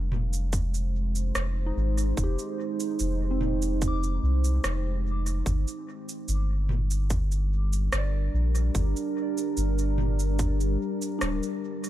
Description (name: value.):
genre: ambient dub.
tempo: 73 BPM.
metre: 4/4.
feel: straight.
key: unclear.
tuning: A4 = 440 Hz.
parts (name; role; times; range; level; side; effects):
deep dark ambient pad; sustained chords; 0.0-11.9 s; G3 to F5; -32 LUFS; right 2 dB; chorus, built-in reverb.
soft dub sub bass; bass; 0.0-11.4 s; D1 to C2; -26 LUFS; equal; none.
organic electronic drum kit; drums; 0.1-11.9 s; cabasa, rim click, toms; -33 LUFS; right 1 dB; dub echo.
electronic kick drum; drums; 0.5-10.6 s; none; -29 LUFS; equal; none.
soft synth bell; arpeggios; 1.7-11.9 s; C4 to D6; -39 LUFS; left 4 dB; chorus, phaser, dub echo.
room: digital ambience.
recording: none.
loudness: -25 LUFS.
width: side -13 dB against mid.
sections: 0.0-11.9 A section.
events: none.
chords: 0.0 Fm7; 5.5 Gm7.